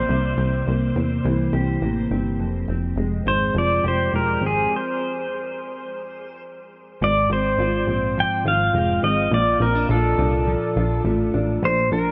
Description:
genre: dream pop.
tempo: 104 BPM.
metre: 4/4.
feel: straight.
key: Bb lydian.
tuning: A4 = 439 Hz.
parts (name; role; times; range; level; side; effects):
pedal steel guitar; melody; 0.0-12.1 s; Ab4 to G5; -25 LUFS; equal; tape echo.
mellow electric guitar; arpeggios; 0.0-12.1 s; F2 to G4; -26 LUFS; equal; lush chorus, tape echo.
plucky analog bass; bass; 0.0-12.1 s; E1 to E2; -26 LUFS; equal; none.
room: moderate huge ambient reverb, RT60 6.2 s.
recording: none.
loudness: -21 LUFS.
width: mono.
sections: 0.0-7.0 A section; 7.0-12.1 B section.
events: stop 4.7-7.0.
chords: 0.0 C7; 2.4 Fmadd9; 4.7 N.C.; 7.0 Ab6; 9.3 Bbmaj7.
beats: | 0.09 0.67 1.24 1.82 | 2.40 2.98 3.55 4.13 | 4.71 5.28 5.86 6.44 | 7.01 7.59 8.17 8.74 | 9.32 9.90 10.47 11.05 | 11.63.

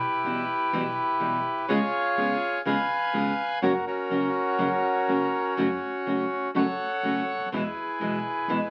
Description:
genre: tango.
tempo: 124 BPM.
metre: 4/4.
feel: rubato.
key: unclear.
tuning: A4 = 442 Hz.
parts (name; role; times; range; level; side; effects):
bandoneon; melody; 0.0-8.7 s; C#4 to G#5; -28 LUFS; equal; none.
nylon-string guitar; accompaniment; 0.2-8.6 s; B2 to G#4; -30 LUFS; equal; none.
upright bass; bass; 0.2-8.7 s; F#1 to E2; -47 LUFS; equal; none.
room: moderate studio reverb, RT60 0.7 s.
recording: very old 78 rpm record, vinyl crackle.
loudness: -26 LUFS.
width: mono.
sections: 0.0-8.7 A section.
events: none.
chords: 0.0 Em/B; 1.7 C#7; 3.6 F#; 5.6 F#m; 7.5 E.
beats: 0.26 0.74 1.22 | 1.70 2.18 2.66 3.14 | 3.63 4.11 4.60 5.09 | 5.58 6.06 6.55 7.04 | 7.52 8.01 8.49.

